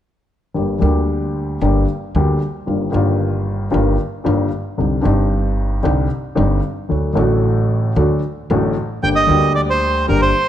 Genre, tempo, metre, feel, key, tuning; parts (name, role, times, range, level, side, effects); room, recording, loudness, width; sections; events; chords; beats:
tango; 114 BPM; 4/4; rubato; G harmonic minor; A4 = 441 Hz
dark baby grand piano; accompaniment; 0.5-10.3 s; G1 to G4; -18 LUFS; left 2 dB
upright bass; bass; 0.6-10.3 s; G1 to D2; -20 LUFS; right 1 dB
bandoneon; melody; 9.0-10.5 s; Bb4 to G5; -15 LUFS; right 3 dB; slapback echo
light reverb; dark, warm production; -15 LUFS; side -11 dB against mid
0.6-9.0 A section; 9.0-10.5 B section
0.6 Gm; 2.7 Ebadd9/G; 4.8 Cmadd9; 6.9 D; 9.0 Gm
| 0.56 1.09 1.62 2.15 | 2.68 3.21 3.73 4.26 | 4.79 5.31 5.84 6.37 | 6.90 7.43 7.96 8.49 | 9.03 9.56 10.09